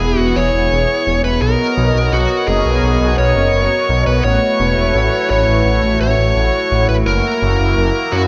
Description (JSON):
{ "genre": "synthwave", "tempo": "85 BPM", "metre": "4/4", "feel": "straight", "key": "unclear", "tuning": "A4 = 440 Hz", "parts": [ { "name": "bluesy overdriven lead guitar", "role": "melody", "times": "0.0-8.3 s", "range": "F#4 to C#5", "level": "-19 LUFS", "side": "equal", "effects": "distortion, digital delay" }, { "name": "warm analog pad", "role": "sustained chords", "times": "0.0-8.3 s", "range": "A3 to D#5", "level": "-21 LUFS", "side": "equal", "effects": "chorus, vintage 12-bit sampler grit" }, { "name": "detuned saw bass", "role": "bass", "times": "0.0-8.3 s", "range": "E1 to F#2", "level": "-19 LUFS", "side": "equal", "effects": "chorus" } ], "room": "moderate plate reverb, RT60 2.2 s", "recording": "bright 1980s-style digital production", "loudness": "-15 LUFS", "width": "mono", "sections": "0.0-8.3 A section", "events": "none", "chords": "0.0 E; 1.4 Bmaj7; 4.2 A6; 7.1 F#7", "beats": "0.01 0.71 | 1.42 2.13 2.83 3.54 | 4.24 4.95 5.66 6.36 | 7.07 7.77" }